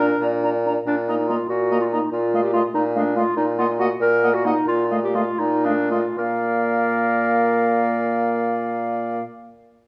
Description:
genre	quick classical-period movement for wind quintet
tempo	75-97 BPM (dotted quarters)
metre	6/8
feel	straight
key	Bb major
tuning	A4 = 440 Hz
part	concert flute	melody	0.0-9.2 s	F5 to Bb5	-28 LUFS	equal	none
part	warm oboe	second line	0.0-9.2 s	Bb4 to Eb5	-33 LUFS	equal	none
part	mellow French horn	accompaniment	0.0-9.2 s	A3 to D4	-31 LUFS	equal	none
part	mellow clarinet	accompaniment	0.0-9.2 s	D4 to Bb4	-25 LUFS	equal	none
part	mellow bassoon	bass	0.0-9.2 s	Bb2	-26 LUFS	equal	none
room	moderate recital hall reverb, RT60 1.4 s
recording	none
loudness	-21 LUFS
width	mono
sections	0.9-6.2 A section; 6.2-9.3 B section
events	slowing down 2.8-6.2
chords	0.0 Bb; 0.9 Eb5/Bb; 2.1 F7/Bb; 3.4 Ebm/Bb; 4.7 F7/Bb; 6.2 Bb

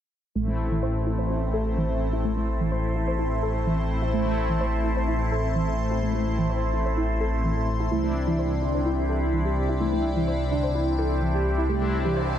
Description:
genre	techno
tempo	127 BPM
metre	4/4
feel	straight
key	A minor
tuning	A4 = 440 Hz
part	evolving wavetable pad	sustained chords	0.8-12.4 s	E4 to C6	-32 LUFS	equal	phaser, built-in reverb
part	soft round pluck	arpeggios	0.4-12.2 s	E3 to C5	-30 LUFS	right 2 dB	analog chorus, tape echo
part	brassy analog pad	stabs	0.4-12.4 s	A3 to E4	-30 LUFS	left 2 dB	chorus, tremolo, tape echo
part	swelling detuned saw bass	bass	0.4-12.4 s	A1 to C2	-26 LUFS	equal	none
part	wide unison lead	melody	7.9-12.3 s	D4 to G4	-28 LUFS	equal	vintage 12-bit sampler grit, digital delay
part	riser	sound effects	12.0-12.4 s	none	-35 LUFS	right 2 dB	none
room	light reverb, digital ambience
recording	none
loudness	-23 LUFS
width	side -10 dB against mid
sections	0.4-12.4 A section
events	filter sweep on synth arpeggio sound 0.4-12.4; riser 12.0-12.4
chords	0.4 Am; 7.9 Cadd9

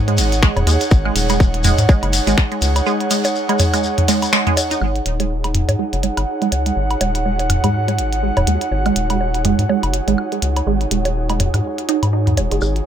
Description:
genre	minimal techno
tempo	123 BPM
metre	4/4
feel	swing 58% on 16ths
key	unclear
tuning	A4 = 440 Hz
part	rubbery square bass	bass	0.0-12.8 s	D#1 to G#2	-19 LUFS	left 1 dB	tube saturation, sidechain pumping
part	airy breathy pad	texture	0.0-12.9 s	D#4 to G#5	-22 LUFS	right 3 dB	chorus, sidechain pumping
part	resonant blip pluck	riff	0.1-12.7 s	G#3 to D#4	-22 LUFS	right 4 dB	phaser, sidechain pumping, digital delay
part	minimal click drum kit	drums	0.1-12.8 s	finger snaps, hi-hat, ride cymbal	-23 LUFS	equal	none
part	electronic bongos, toms and woodblock	percussion	0.1-12.7 s	none	-21 LUFS	equal	tape echo
part	shekere	percussion	0.2-4.8, 12.6-12.7 s	none	-24 LUFS	left 4 dB	none
part	electronic kick drum	drums	0.4-2.5 s	none	-12 LUFS	left 1 dB	none
part	flickering grainy texture	texture	4.8-12.9 s	F#4 to F#5	-32 LUFS	left 1 dB	built-in reverb, sidechain pumping
room	moderate studio ambience, RT60 0.5 s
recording	none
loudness	-15 LUFS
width	side -9 dB against mid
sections	0.0-4.8 A section; 4.8-12.9 B section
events	drop 0.0-4.8; band accent 4.3; filter sweep on synth pluck 4.8-12.9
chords	0.0 G#5

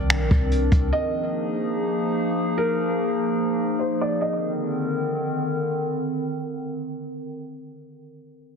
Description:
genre	hip hop, atmospheric cloud-rap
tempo	free time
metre	none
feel	none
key	C minor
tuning	A4 = 438 Hz
part	felt-muted upright piano	melody	0.0-5.4 s	Bb4 to Eb5	-29 LUFS	equal	low-pass filter, tape echo
part	warbly tape-like pad	sustained chords	0.0-7.3 s	D3 to Bb4	-25 LUFS	equal	chorus, built-in reverb, sidechain pumping
part	clean 808-style bass	bass	0.0-0.9 s	Bb1 to C2	-22 LUFS	equal	none
part	jazz brush drum kit	drums	0.1-0.8 s	finger snaps, hi-hat, kick drum	-21 LUFS	equal	none
room	light reverb, small room ambience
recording	heavily compressed radio sound, low-pass filter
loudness	-22 LUFS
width	side -6 dB against mid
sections	0.0-4.2 A section; 4.2-7.5 B section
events	filter sweep 0.0-4.2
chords	0.0 Cm9; 0.9 Bb7sus4; 4.2 Cm9

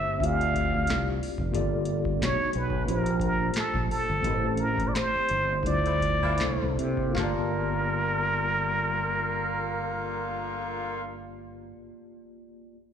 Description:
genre	R&B, neo-soul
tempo	77-91 BPM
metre	4/4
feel	swing 57% on 16ths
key	G dorian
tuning	A4 = 440 Hz
part	trumpet with plunger mute	melody	0.0-11.0 s	A4 to F5	-28 LUFS	right 2 dB	slapback echo
part	mellow tine electric piano	accompaniment	0.0-12.8 s	G3 to A5	-33 LUFS	left 1 dB	medium stereo tremolo, slapback echo
part	fretless electric bass	bass	0.0-11.7 s	F1 to C3	-30 LUFS	equal	lush chorus
part	booming analog drum machine	drums	0.2-7.4 s	handclaps, hi-hat, kick drum, snare drum	-33 LUFS	equal	none
part	warm horn section	stabs	5.9-11.0 s	D3 to F4	-35 LUFS	left 1 dB	slapback echo
room	light reverb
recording	live gig heard through the venue's PA, club reverb, faint mains hum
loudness	-25 LUFS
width	side -8 dB against mid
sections	0.0-7.2 A section; 7.2-10.3 B section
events	slowing down 1.5-7.2; band accent 4.2-7.2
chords	0.2 Dm7; 1.5 Gm9; 2.2 B69; 2.9 Bb69; 4.2 Am7; 5.7 Dm11; 6.4 C13; 7.2 Gm9

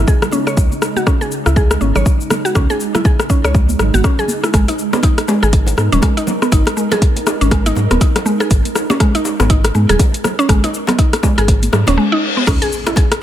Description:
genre	afro house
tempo	121 BPM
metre	4/4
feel	swing 59% on 16ths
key	unclear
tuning	A4 = 441 Hz
part	ethereal airy pad	sustained chords	0.0-13.2 s	C#3 to A#4	-24 LUFS	right 3 dB	ensemble chorus, built-in reverb, sidechain pumping
part	mallet-like synth pluck	arpeggios	0.0-13.1 s	G#3 to C#5	-18 LUFS	equal	chorus, sidechain pumping, tape echo
part	round analog bass	bass	0.0-12.6 s	D#1 to G#2	-16 LUFS	equal	sidechain pumping
part	deep house drum kit	drums	0.1-13.2 s	crash cymbal, hi-hat, rim click, shaker	-20 LUFS	left 2 dB	overdrive
part	electronic kick drum	drums	0.1-13.1 s	none	-13 LUFS	equal	overdrive
part	congas	percussion	0.1-12.0 s	none	-24 LUFS	right 3 dB	none
part	bongos	percussion	4.7-13.1 s	none	-26 LUFS	left 4 dB	none
part	reverse cymbal and impact	sound effects	11.8-13.2 s	none	-23 LUFS	left 4 dB	none
room	little or no reverb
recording	none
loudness	-12 LUFS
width	side -11 dB against mid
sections	0.0-12.5 A section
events	reverse cymbal 11.8-12.5; impact 12.5-13.2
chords	0.0 C#m; 4.5 G#m; 12.5 C#m

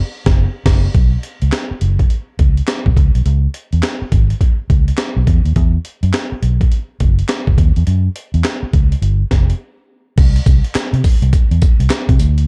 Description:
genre	R&B, new jack swing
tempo	104 BPM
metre	4/4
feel	swing 63% on 16ths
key	unclear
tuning	A4 = 440 Hz
part	vintage muted fingered electric bass	bass	0.3-12.5 s	E1 to C3	-16 LUFS	equal	none
part	breakbeat sampler-style drum kit	drums	0.3-12.5 s	crash cymbal, handclaps, hi-hat, kick drum, snare drum, tambourine	-16 LUFS	equal	none
room	little or no reverb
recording	dark, warm production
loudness	-15 LUFS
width	mono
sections	0.9-10.2 A section; 10.2-12.5 B section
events	band accent 0.0-0.9; break 9.6-10.2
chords	none

